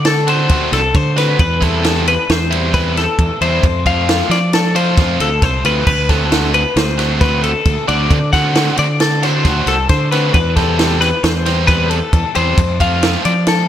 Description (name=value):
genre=math rock and midwest emo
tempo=134 BPM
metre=5/4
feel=straight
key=unclear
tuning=A4 = 440 Hz
part: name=twelve-string electric guitar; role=arpeggios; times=0.0-13.7 s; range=A4 to F#5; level=-17 LUFS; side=left 4 dB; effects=none
part: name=fuzz fingered electric bass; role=bass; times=0.0-13.7 s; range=C2 to F3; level=-17 LUFS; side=equal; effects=overdrive
part: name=compact cocktail drum kit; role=drums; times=0.0-13.6 s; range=crash cymbal, kick drum, ride cymbal, snare drum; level=-17 LUFS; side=right 1 dB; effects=none
part: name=biting overdriven guitar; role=riff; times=0.3-13.3 s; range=D3 to G4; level=-20 LUFS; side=right 2 dB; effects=slapback echo
room=light reverb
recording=none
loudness=-12 LUFS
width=side -10 dB against mid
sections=0.0-13.7 A section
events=none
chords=0.0 D7; 1.4 Cmaj7/E; 3.6 F6; 5.9 D7; 10.3 Cmaj7/E; 12.6 F6